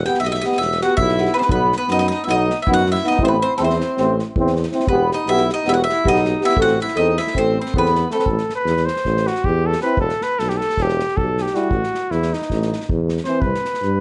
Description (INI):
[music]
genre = balkan folk, Balkan brass band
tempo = 318 BPM (eighths)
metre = 9/8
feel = straight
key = A dorian sharp4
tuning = A4 = 440 Hz
[part]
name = bowl-back mandolin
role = melody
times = 0.0-8.3 s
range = A4 to G5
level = -23 LUFS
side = equal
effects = none
[part]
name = warm euphonium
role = accompaniment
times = 0.0-13.4 s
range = C4 to A4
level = -26 LUFS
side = equal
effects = none
[part]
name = mellow tuba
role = bass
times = 0.0-14.0 s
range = E1 to G2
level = -24 LUFS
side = equal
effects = none
[part]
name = warm trombone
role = accompaniment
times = 0.1-13.4 s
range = E3 to C4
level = -26 LUFS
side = equal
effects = none
[part]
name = unplugged drum kit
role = percussion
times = 0.1-13.9 s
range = kick drum, snare drum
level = -29 LUFS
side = equal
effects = none
[part]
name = clear trumpet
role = second line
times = 0.8-14.0 s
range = A3 to C5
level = -25 LUFS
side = equal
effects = none
[sound]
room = light reverb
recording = nothing above 10.4 kHz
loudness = -19 LUFS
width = mono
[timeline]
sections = 0.0-8.3 A section; 8.3-14.0 B section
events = trumpet solo 8.3-14.0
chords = 0.0 Em; 1.5 B; 3.2 Am; 4.9 Em; 6.6 Am; 10.0 Em; 11.7 A5; 13.4 C5